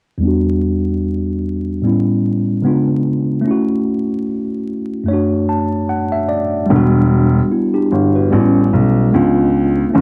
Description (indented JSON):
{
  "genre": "hip hop",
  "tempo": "74 BPM",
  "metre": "4/4",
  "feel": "swing 57% on 16ths",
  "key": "E dorian",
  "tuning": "A4 = 444 Hz",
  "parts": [
    { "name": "mellow tine electric piano", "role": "accompaniment", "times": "0.2-10.0 s", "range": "E2 to A5", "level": "-17 LUFS", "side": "equal", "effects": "cassette tape, low-pass filter" },
    { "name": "dark baby grand piano", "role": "bass", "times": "6.7-10.0 s", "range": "E1 to C#2", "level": "-16 LUFS", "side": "equal", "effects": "none" }
  ],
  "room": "moderate spring reverb, RT60 1.3 s",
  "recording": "home recording on cassette, vinyl crackle",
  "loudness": "-16 LUFS",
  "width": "mono",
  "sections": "0.2-6.7 A section; 6.7-10.0 B section",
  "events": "filter sweep on tine electric piano 0.2-6.7; tine electric piano fill 5.1-6.7",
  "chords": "0.2 Em7; 1.8 A9; 2.6 C#7b9; 3.4 F#m7; 5.1 Dmaj9/F#; 6.7 Em7; 8.3 A9; 9.1 C#7b9"
}